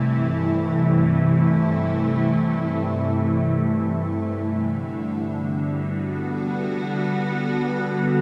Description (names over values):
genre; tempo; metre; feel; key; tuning
ambient; free time; none; none; G major; A4 = 436 Hz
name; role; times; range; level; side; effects
evolving wavetable pad; solo; 0.0-8.2 s; G2 to A4; -22 LUFS; equal; ensemble chorus, built-in reverb, phaser, diffuse ambient delay
room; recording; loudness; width
wet cathedral reverb, RT60 6.1 s; none; -22 LUFS; mono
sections
0.0-8.2 A section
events
none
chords
0.0 Am/G; 4.2 Gmaj9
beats
free time